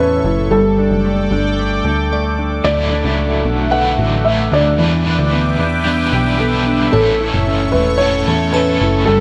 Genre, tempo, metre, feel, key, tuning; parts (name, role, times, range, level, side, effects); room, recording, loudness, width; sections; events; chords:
dream pop; 112 BPM; 4/4; straight; A4 = 441 Hz
felt-muted upright piano; melody; 0.0-9.2 s; A4 to F#5; -20 LUFS; equal; tape echo
phased analog pad; sustained chords; 0.0-9.2 s; A4 to D6; -24 LUFS; equal; phaser, chorus
mellow electric guitar; arpeggios; 0.0-9.2 s; A2 to A4; -21 LUFS; equal; lush chorus, tape echo
plucky analog bass; bass; 0.0-9.2 s; E1 to E2; -20 LUFS; equal
glassy synth bell; texture; 0.0-9.2 s; A4 to A5; -32 LUFS; equal; chorus, tape echo
crunchy overdriven guitar; accompaniment; 2.6-9.2 s; A2 to B4; -23 LUFS; equal; tremolo, subtle chorus
moderate concert hall reverb, RT60 1.8 s, digital ambience; lossy compression artefacts; -15 LUFS; mono
0.0-9.2 A section
0.0 A; 0.5 Gsus2; 2.6 Dadd9; 4.8 Em7; 6.9 A